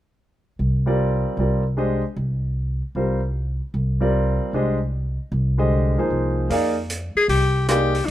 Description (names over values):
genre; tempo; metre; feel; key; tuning
modal jazz; 152 BPM; 4/4; swing 66% on 8ths; F dorian; A4 = 440 Hz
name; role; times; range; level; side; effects
upright bass; bass; 0.6-8.1 s; C2 to F2; -22 LUFS; equal; none
clear concert grand piano; accompaniment; 0.9-7.9 s; D3 to F5; -22 LUFS; equal; none
vintage drum kit; drums; 6.5-8.1 s; hi-hat, rim click; -30 LUFS; right 3 dB; none
clear alto saxophone; melody; 7.2-8.1 s; D4 to Ab4; -19 LUFS; left 4 dB; none
room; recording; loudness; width
light reverb; minimal, uncompressed stereo recording; -19 LUFS; side -13 dB against mid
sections
0.2-6.5 A section; 6.5-8.1 B section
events
none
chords
0.2 F9sus4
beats
| 0.20 0.59 0.99 1.38 | 1.77 2.17 2.56 2.95 | 3.35 3.74 4.13 4.53 | 4.92 5.32 5.71 6.10 | 6.50 6.89 7.28 7.68 | 8.07